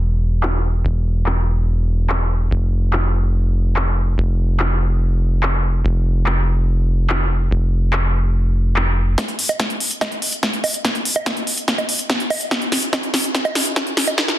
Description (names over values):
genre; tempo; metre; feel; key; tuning
psychedelic trance; 144 BPM; 4/4; straight; unclear; A4 = 441 Hz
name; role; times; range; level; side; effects
tight sequencer bass; bass; 0.0-9.2 s; E1 to F1; -16 LUFS; equal; tube saturation
big-room dance drum kit; drums; 0.4-14.4 s; bongos, handclaps, hi-hat, snare drum; -20 LUFS; equal; low-pass filter on snare, low-pass filter on hats, low-pass filter on perc, low-pass filter on room
electronic kick drum; drums; 9.2-14.3 s; none; -25 LUFS; equal; high-pass filter on kick, high-pass filter on room
room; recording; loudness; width
little or no reverb; dense, heavily limited modern master, high-pass filter; -16 LUFS; side -14 dB against mid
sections
0.0-9.2 A section; 9.2-14.4 B section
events
build-up 9.2-14.4; drum fill 9.2-14.4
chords
none